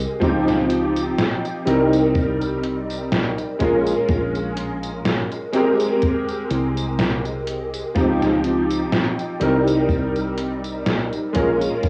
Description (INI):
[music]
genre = vaporwave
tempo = 62 BPM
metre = 4/4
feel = swing 55% on 16ths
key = unclear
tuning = A4 = 440 Hz
[part]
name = clear electric grand piano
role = accompaniment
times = 0.0-11.9 s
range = F3 to Bb4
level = -22 LUFS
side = equal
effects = ensemble chorus, vintage 12-bit sampler grit, cassette tape, tape echo
[part]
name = woody fretless electric bass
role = bass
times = 0.0-11.9 s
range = Ab1 to Db2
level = -29 LUFS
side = equal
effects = none
[part]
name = detuned 8-bit digital drum machine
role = drums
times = 0.0-11.9 s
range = hi-hat, snare drum, tambourine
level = -27 LUFS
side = equal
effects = none
[part]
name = kick drum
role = drums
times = 0.2-11.9 s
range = none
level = -26 LUFS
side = equal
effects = none
[sound]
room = moderate studio ambience, RT60 0.5 s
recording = home recording on cassette, studio reverb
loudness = -21 LUFS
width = mono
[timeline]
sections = 0.0-11.9 A section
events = none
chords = 0.2 Dbmaj9#11; 1.7 Cm7; 3.6 Bbm7; 5.5 Abmaj9; 8.0 Dbmaj9#11; 9.4 Cm7; 11.3 Bbm7